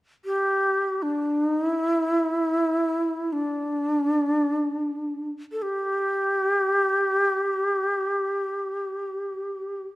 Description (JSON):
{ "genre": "japanese traditional", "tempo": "free time", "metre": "none", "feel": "none", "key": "unclear", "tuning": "A4 = 440 Hz", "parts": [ { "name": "breathy shakuhachi", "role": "melody", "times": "0.3-9.8 s", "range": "D4 to A4", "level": "-23 LUFS", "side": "equal", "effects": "none" } ], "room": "moderate recital hall reverb, RT60 1.4 s", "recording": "dark, warm production", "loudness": "-23 LUFS", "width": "side -18 dB against mid", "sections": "0.0-10.0 A section", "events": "none", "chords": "none" }